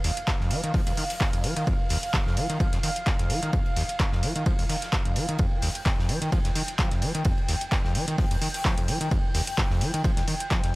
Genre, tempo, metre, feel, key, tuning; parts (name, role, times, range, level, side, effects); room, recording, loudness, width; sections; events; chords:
acid house; 129 BPM; 4/4; swing 55% on 16ths; A4 = 442 Hz
warm analog pad; sustained chords; 0.0-10.8 s; F5 to G5; -34 LUFS; equal; chorus, sidechain pumping
overdriven acid bass; riff; 0.0-10.8 s; Eb2 to F3; -29 LUFS; equal; distortion, tube saturation, wide subtle chorus, tape echo
booming analog drum machine; drums; 0.0-10.7 s; handclaps, hi-hat; -31 LUFS; equal
modern studio drum kit; drums; 0.0-10.7 s; hi-hat, ride cymbal, snare drum; -39 LUFS; right 1 dB; sidechain pumping on cymbals, high-pass filter on cymbals, sidechain pumping on hats, high-pass filter on hats, high-pass filter on snare, high-pass filter on room
electronic kick drum; drums; 0.3-10.6 s; -26 LUFS; equal
small room ambience; -23 LUFS; side -21 dB against mid
0.0-10.8 A section
0.0 Ebadd9